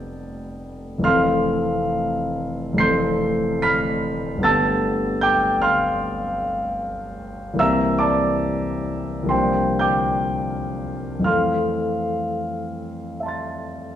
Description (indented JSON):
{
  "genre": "classical, impressionist solo piano",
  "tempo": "58-77 BPM",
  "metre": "4/4",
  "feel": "rubato",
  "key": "F lydian",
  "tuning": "A4 = 440 Hz",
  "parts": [
    { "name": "warm concert grand piano", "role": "solo", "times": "0.0-14.0 s", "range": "F1 to C7", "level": "-20 LUFS", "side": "equal", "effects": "none" }
  ],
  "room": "wet recital hall reverb, RT60 1.8 s",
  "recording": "recorded in a church or concert hall",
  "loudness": "-19 LUFS",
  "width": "side -10 dB against mid",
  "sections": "0.0-14.0 A section",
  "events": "none",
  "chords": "0.0 G9/F; 1.1 Fmaj7; 4.4 G9; 7.6 C9; 9.3 C9sus4; 11.3 Fmaj7",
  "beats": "0.22 | 1.06 1.90 2.81 3.64 | 4.45 5.24 6.02 6.82 | 7.61 8.40 9.30 10.29 | 11.26 12.23 13.20"
}